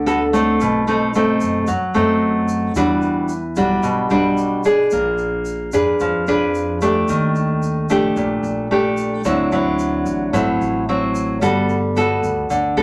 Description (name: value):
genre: bossa nova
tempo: 111 BPM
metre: 4/4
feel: straight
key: G major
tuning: A4 = 440 Hz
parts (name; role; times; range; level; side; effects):
- nylon-string guitar; accompaniment; 0.0-12.8 s; A2 to Cb5; -19 LUFS; equal; none
- upright bass; bass; 0.0-12.8 s; G1 to F#2; -29 LUFS; equal; none
- egg shaker; percussion; 0.1-12.8 s; none; -43 LUFS; equal; none
room: wet club reverb, RT60 0.6 s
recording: none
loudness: -18 LUFS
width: mono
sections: 0.0-12.8 A section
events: none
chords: 0.0 Gmaj9 (rootless); 0.6 B7b9; 2.8 Em9; 4.9 Bb7b9; 7.1 Ebmaj7#11; 9.3 D9; 11.4 Gmaj9